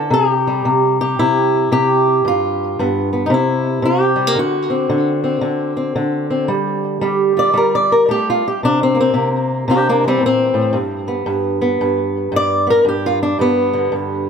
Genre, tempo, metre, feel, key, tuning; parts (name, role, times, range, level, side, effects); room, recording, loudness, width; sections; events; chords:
acoustic country blues, solo or duo; 113 BPM; 4/4; swing 63% on 8ths; G mixolydian; A4 = 440 Hz
fingerpicked swing-style acoustic guitar; solo; 0.0-14.3 s; G2 to D5; -14 LUFS; equal; tape echo
moderate spring reverb, RT60 1.3 s, small room reverb; -14 LUFS; side -6 dB against mid
0.0-6.5 A section; 6.5-14.3 B section
steel-string acoustic guitar solo 6.5-14.3
0.1 C; 2.2 G7; 3.3 C; 4.4 D7; 6.5 G5; 8.6 C7; 10.7 G